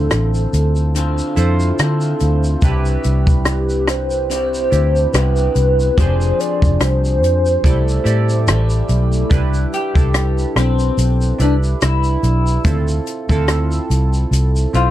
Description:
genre	indie pop, bedroom pop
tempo	72 BPM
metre	4/4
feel	swing 55% on 16ths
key	C major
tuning	A4 = 440 Hz
part	hollow clarinet-like synth lead	melody	0.0-8.9 s	G4 to D5	-20 LUFS	equal	analog chorus, tape echo
part	chorused retro synth keys	accompaniment	0.0-14.9 s	C4 to D5	-25 LUFS	right 4 dB	cassette tape
part	electric guitar through a small old amp	accompaniment	0.0-14.9 s	C3 to A4	-22 LUFS	left 3 dB	lush chorus, warbly pitch drift
part	vintage muted fingered electric bass	bass	0.0-14.9 s	F1 to D3	-16 LUFS	equal	none
part	compact cocktail drum kit	drums	0.1-14.9 s	hi-hat, kick drum, rim click, shaker	-19 LUFS	equal	none
room	little or no reverb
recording	dark, warm production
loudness	-14 LUFS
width	side -13 dB against mid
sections	0.0-9.3 A section; 9.3-14.9 B section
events	clean electric guitar solo 9.3-14.9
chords	0.0 Dm7; 2.6 Cmaj7; 6.0 Fm6; 7.6 C6; 9.3 Cmaj7; 12.7 Dm7

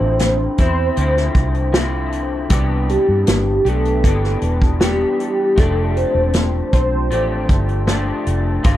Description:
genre	indie pop, bedroom pop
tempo	78 BPM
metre	4/4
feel	straight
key	unclear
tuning	A4 = 439 Hz
part	warm velvety synth lead	melody	0.0-7.5 s	G4 to C5	-20 LUFS	equal	tremolo, ensemble chorus, tape echo
part	electric guitar through a small old amp	accompaniment	0.0-8.8 s	G2 to G4	-22 LUFS	left 2 dB	analog chorus, vibrato effect
part	vintage muted fingered electric bass	bass	0.0-8.8 s	E1 to G2	-19 LUFS	equal	none
part	unplugged drum kit	drums	0.2-8.8 s	hi-hat, kick drum, snare drum	-18 LUFS	equal	none
room	light reverb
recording	none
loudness	-15 LUFS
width	side -13 dB against mid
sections	0.0-8.8 A section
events	none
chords	0.0 Dm9; 2.5 Cmaj9; 5.6 F69

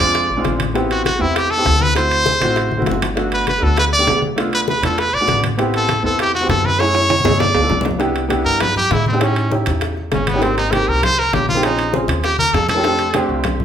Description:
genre	Afro-Cuban jazz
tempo	198 BPM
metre	4/4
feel	straight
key	unclear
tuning	A4 = 436 Hz
part	brilliant trumpet	melody	0.0-13.4 s	B3 to D5	-17 LUFS	equal	none
part	warm baby grand piano	accompaniment	0.0-13.6 s	G#3 to A4	-21 LUFS	equal	none
part	upright bass	bass	0.0-13.6 s	G1 to A2	-22 LUFS	equal	none
part	bongos	percussion	0.0-13.6 s	none	-26 LUFS	left 5 dB	none
part	timbales	percussion	0.0-13.6 s	none	-24 LUFS	right 4 dB	none
part	congas	percussion	0.2-13.6 s	none	-26 LUFS	left 3 dB	none
room	moderate large studio reverb, RT60 0.9 s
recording	band playing live in one room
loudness	-14 LUFS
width	side -9 dB against mid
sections	0.0-8.0 A section; 8.0-13.6 B section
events	drum fill 2.7-3.2, 6.8-8.0, 12.4-12.8; trumpet solo 8.0-13.6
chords	0.0 A#9; 0.8 Am7; 2.0 D7; 3.2 Gmaj7; 4.4 Bm7b5; 5.0 E7; 5.6 Am9; 6.8 F#m7; 7.4 G9; 8.0 Cmaj9; 9.2 A7#11; 10.4 Abmaj9; 11.6 Bbm7; 12.2 Ebadd9; 12.8 F6

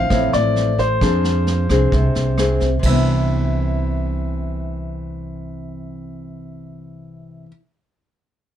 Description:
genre	bossa nova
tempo	132 BPM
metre	4/4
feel	straight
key	C major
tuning	A4 = 440 Hz
part	clear baby grand piano	melody	0.0-7.5 s	C5 to F5	-24 LUFS	left 2 dB	none
part	nylon-string guitar	accompaniment	0.0-7.6 s	A2 to Ab4	-23 LUFS	left 1 dB	none
part	upright bass	bass	0.0-7.5 s	A1 to F2	-20 LUFS	right 1 dB	none
part	vintage brush drum kit	drums	0.1-2.9 s	crash cymbal, kick drum, rim click, snare drum	-25 LUFS	right 1 dB	none
room	little or no reverb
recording	none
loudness	-16 LUFS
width	side -10 dB against mid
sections	0.0-2.8 A section; 2.8-6.5 B section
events	none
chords	0.0 Dm9; 1.0 Fm6; 2.8 Cmaj9

